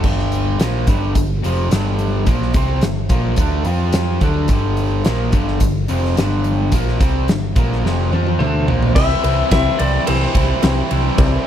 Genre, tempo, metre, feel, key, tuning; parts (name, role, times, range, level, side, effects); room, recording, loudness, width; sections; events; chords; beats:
classic rock; 108 BPM; 4/4; straight; A4 = 443 Hz
distorted electric guitar; riff; 0.0-11.5 s; F2 to F4; -24 LUFS; left 12 dB; distortion
raw garage guitar; riff; 0.0-11.5 s; F2 to F4; -23 LUFS; right 11 dB; overdrive
picked electric bass; bass; 0.0-11.4 s; F1 to F2; -19 LUFS; equal
huge arena drum kit; drums; 0.0-11.3 s; crash cymbal, hi-hat, kick drum, ride cymbal, snare drum, toms; -19 LUFS; equal
clean lap steel guitar; melody; 8.4-10.9 s; C5 to E5; -21 LUFS; left 5 dB; slapback echo
barky reed electric piano; accompaniment; 9.0-11.5 s; C4 to D5; -25 LUFS; left 6 dB; fast tremolo
cowbell; percussion; 9.0-11.3 s; -30 LUFS; right 4 dB
small room ambience; -14 LUFS; side -10 dB against mid
0.0-9.0 A section; 9.0-11.5 B section
drum fill 7.8-9.0
0.0 G5; 3.7 F5; 4.2 G5; 9.0 C
| 0.03 0.59 1.15 1.71 | 2.27 2.82 3.38 3.94 | 4.50 5.06 5.62 6.17 | 6.73 7.29 7.85 8.40 | 8.96 9.52 10.07 10.63 | 11.18